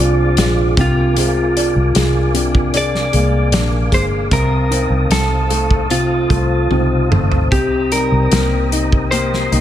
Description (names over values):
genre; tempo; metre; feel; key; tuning
pop ballad; 76 BPM; 4/4; straight; unclear; A4 = 440 Hz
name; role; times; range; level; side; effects
electric guitar at the edge of break-up; melody; 0.0-9.6 s; F4 to D5; -19 LUFS; right 1 dB; none
clear concert grand piano; accompaniment; 0.0-9.6 s; C3 to Eb4; -22 LUFS; left 2 dB; none
percussive tonewheel organ; sustained chords; 0.0-9.6 s; Ab4 to Eb6; -25 LUFS; right 1 dB; chorus vibrato, fast rotary speaker
fingerpicked steel-string acoustic guitar; arpeggios; 0.0-9.6 s; C3 to A4; -24 LUFS; left 4 dB; none
vintage muted fingered electric bass; bass; 0.0-9.6 s; G1 to C2; -18 LUFS; equal; none
loose indie drum kit; drums; 0.4-9.6 s; hi-hat, kick drum, snare drum, toms; -18 LUFS; equal; none
room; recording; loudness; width
studio reverb; none; -13 LUFS; side -11 dB against mid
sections
0.0-9.6 A section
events
drum fill 6.7-7.5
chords
0.0 Ddim/C; 0.8 Bb7/C; 4.3 F7/C; 7.5 Cm7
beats
0.38 | 1.17 1.96 2.75 3.53 | 4.32 5.11 5.90 6.71 | 7.52 8.32 9.12